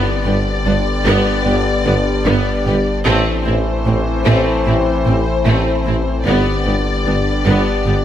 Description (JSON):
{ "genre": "cinematic, hybrid orchestral and electronic film score", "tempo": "75 BPM", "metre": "4/4", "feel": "straight", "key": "unclear", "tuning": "A4 = 443 Hz", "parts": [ { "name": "warm symphonic violin section", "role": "melody", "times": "0.0-8.0 s", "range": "C5 to D5", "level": "-23 LUFS", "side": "left 6 dB", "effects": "none" }, { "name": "dark symphonic violin section", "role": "second line", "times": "0.0-7.9 s", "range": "A3 to G4", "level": "-25 LUFS", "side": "left 3 dB", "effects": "none" }, { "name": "warm symphonic viola section", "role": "accompaniment", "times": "0.0-7.9 s", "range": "B3 to C4", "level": "-22 LUFS", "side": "right 1 dB", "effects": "none" }, { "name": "bright trombone section", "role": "sustained chords", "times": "0.0-8.0 s", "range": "D3 to A3", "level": "-24 LUFS", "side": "right 1 dB", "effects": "none" }, { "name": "dark analog pad", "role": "sustained chords", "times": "0.0-8.0 s", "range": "B3 to D5", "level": "-25 LUFS", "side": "left 1 dB", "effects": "chorus, phaser" }, { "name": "mellow French horn section", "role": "sustained chords", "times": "0.0-8.0 s", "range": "B3 to G4", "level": "-24 LUFS", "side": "left 5 dB", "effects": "none" }, { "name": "pure sine sub bass", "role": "bass", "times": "0.0-8.0 s", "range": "G1 to A1", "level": "-22 LUFS", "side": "left 1 dB", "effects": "none" }, { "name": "clear tuba", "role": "bass", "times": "0.3-8.0 s", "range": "G1 to A1", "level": "-24 LUFS", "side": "right 3 dB", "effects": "none" }, { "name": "rich studio cello section", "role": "bass", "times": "0.3-7.9 s", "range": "G2 to A2", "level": "-21 LUFS", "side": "right 2 dB", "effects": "none" }, { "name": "warm symphonic double bass section", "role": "bass", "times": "0.3-7.9 s", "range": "G1 to A1", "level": "-22 LUFS", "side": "right 3 dB", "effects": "none" } ], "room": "light reverb", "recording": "close, detailed microphones", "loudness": "-13 LUFS", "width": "side -10 dB against mid", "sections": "0.0-8.0 A section", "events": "none", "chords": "0.0 G; 3.1 Am; 6.3 G", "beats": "0.66 1.46 2.26 | 3.06 3.86 4.66 5.46 | 6.26 7.06 7.86" }